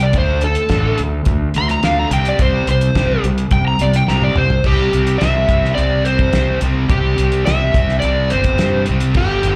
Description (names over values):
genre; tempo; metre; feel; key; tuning
classic rock; 106 BPM; 4/4; straight; unclear; A4 = 439 Hz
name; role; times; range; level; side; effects
overdriven slide guitar; melody; 0.0-9.6 s; G4 to C6; -21 LUFS; equal; slapback echo
sludgy distorted guitar; riff; 0.0-9.6 s; G2 to D4; -24 LUFS; equal; overdrive, slapback echo
fuzz fingered electric bass; bass; 0.0-9.6 s; G1 to G2; -19 LUFS; equal; overdrive
cloth-damped thuddy drum kit; drums; 0.1-9.6 s; crash cymbal, hi-hat, kick drum, snare drum, toms; -22 LUFS; equal; none
room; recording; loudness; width
studio ambience; live gig heard through the venue's PA, club reverb; -16 LUFS; mono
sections
0.0-4.7 A section; 4.7-9.6 B section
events
electric slide guitar solo 0.0-4.7; drum fill 4.1-4.7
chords
0.1 D5; 2.1 C5; 4.7 C